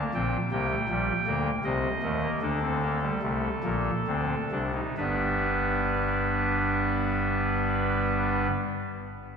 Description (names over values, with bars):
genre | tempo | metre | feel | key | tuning
classical, baroque-style 3-part fugue for pipe organ | 64-81 BPM | 3/4 | straight | unclear | A4 = 440 Hz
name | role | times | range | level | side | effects
pipe organ, soft reed | solo | 0.0-8.5 s | G1 to G5 | -25 LUFS | equal | none
room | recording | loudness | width
wet church reverb, RT60 3.6 s | heard from further back in the room | -25 LUFS | side -6 dB against mid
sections
0.1-5.0 A section; 5.0-9.4 B section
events
slowing down 0.0-5.0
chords
0.1 Gm/Bb; 1.6 Adim/C; 2.4 Gm/D (rootless); 4.1 D5; 5.0 G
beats
| 0.14 0.88 1.64 | 2.41 3.22 4.07 | 4.98 5.92 6.86 | 7.80